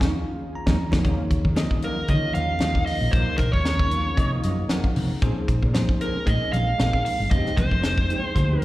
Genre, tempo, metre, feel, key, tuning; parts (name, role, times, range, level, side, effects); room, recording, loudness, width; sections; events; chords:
electric jazz fusion; 115 BPM; 4/4; swing 54% on 16ths; Eb dorian; A4 = 442 Hz
bell-like tine electric piano; accompaniment; 0.0-8.6 s; F3 to Bb5; -30 LUFS; left 1 dB; fast stereo tremolo
ethereal airy pad; sustained chords; 0.0-8.6 s; Eb3 to Bb4; -36 LUFS; equal
mellow electric guitar; stabs; 0.0-8.6 s; F3 to Ab4; -35 LUFS; right 1 dB; ensemble chorus, slapback echo
woody fretless electric bass; bass; 0.0-8.6 s; F1 to Eb3; -24 LUFS; equal
tight funk drum kit; drums; 0.0-8.6 s; hi-hat, kick drum, snare drum; -24 LUFS; equal
congas; percussion; 0.0-8.5 s; -31 LUFS; equal
dark smooth lead guitar; melody; 1.8-8.6 s; Bb4 to F5; -26 LUFS; right 1 dB; overdrive, slapback echo, analog delay
little or no reverb; live gig heard through the venue's PA, recital hall reverb; -20 LUFS; side -17 dB against mid
0.0-1.1 A section; 1.1-8.6 B section
band accent 0.0-1.1; drum fill 0.8; tine electric piano fill 4.2-5.2
0.0 Eb9sus4; 1.1 Ebm9; 5.2 Bbm9; 7.3 Fm9